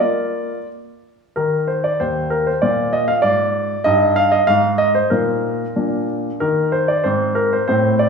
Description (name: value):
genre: classical-period piano sonatina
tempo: 86-98 BPM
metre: 2/4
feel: rubato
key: unclear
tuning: A4 = 440 Hz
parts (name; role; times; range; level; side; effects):
- clear baby grand piano; solo; 0.0-8.1 s; Eb2 to F5; -15 LUFS; equal; none
room: wet recital hall reverb, RT60 1.4 s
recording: recorded in a church or concert hall, studio ambience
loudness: -15 LUFS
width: side -5 dB against mid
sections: 0.0-1.4 A section; 1.4-8.1 B section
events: none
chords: 0.0 Bb; 1.4 N.C.; 2.6 Bb; 3.9 Eb/G; 4.5 Ab5; 5.1 Eb5/Bb; 5.8 Bb; 6.4 N.C.; 7.1 Abadd9